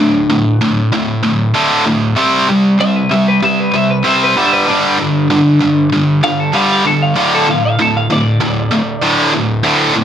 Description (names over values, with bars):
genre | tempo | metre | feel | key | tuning
rock | 96 BPM | 4/4 | straight | unclear | A4 = 441 Hz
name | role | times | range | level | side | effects
twelve-string electric guitar | melody | 0.0-9.3 s | D4 to F5 | -16 LUFS | equal | wide subtle chorus
heavy high-gain guitar | riff | 0.0-10.0 s | D2 to C4 | -11 LUFS | equal | distortion
room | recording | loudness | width
moderate large studio reverb, RT60 1.4 s | none | -10 LUFS | side -9 dB against mid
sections
0.0-10.0 A section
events
clean electric guitar solo 0.0-10.0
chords
0.0 D5; 2.2 C5; 4.4 G5; 7.2 D5